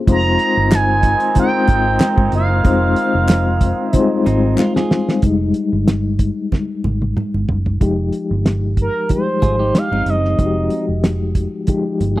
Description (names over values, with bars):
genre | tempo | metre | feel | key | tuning
lush 1970s-style soul | 93 BPM | 4/4 | swing 54% on 16ths | F minor | A4 = 442 Hz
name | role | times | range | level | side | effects
mellow reed electric piano | accompaniment | 0.0-12.2 s | F3 to C5 | -19 LUFS | left 4 dB | fast tremolo
expressive synth lead | melody | 0.1-4.9, 8.8-11.0 s | Bb4 to Bb5 | -19 LUFS | right 2 dB | chorus
mellow horn section | stabs | 0.1-4.9 s | Eb3 to Eb4 | -25 LUFS | right 5 dB | none
vintage muted fingered electric bass | bass | 0.1-12.2 s | F1 to Ab1 | -19 LUFS | right 1 dB | none
cloth-damped thuddy drum kit | drums | 0.1-12.2 s | hi-hat, kick drum, snare drum, toms | -16 LUFS | equal | none
congas | percussion | 0.1-12.2 s | none | -26 LUFS | right 3 dB | none
group handclap | percussion | 0.7-4.7 s | none | -30 LUFS | left 3 dB | none
clean electric guitar | riff | 4.3-5.2, 9.4-12.2 s | C4 to Ab4 | -24 LUFS | right 3 dB | none
room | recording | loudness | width
studio ambience | dry, close 1970s-style studio recording | -14 LUFS | side -16 dB against mid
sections
0.0-5.2 A section; 5.2-7.8 B section; 7.8-12.2 C section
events
drum fill 4.6-5.2, 6.5-7.8; reed electric piano solo 5.2-7.8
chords
0.1 Fm7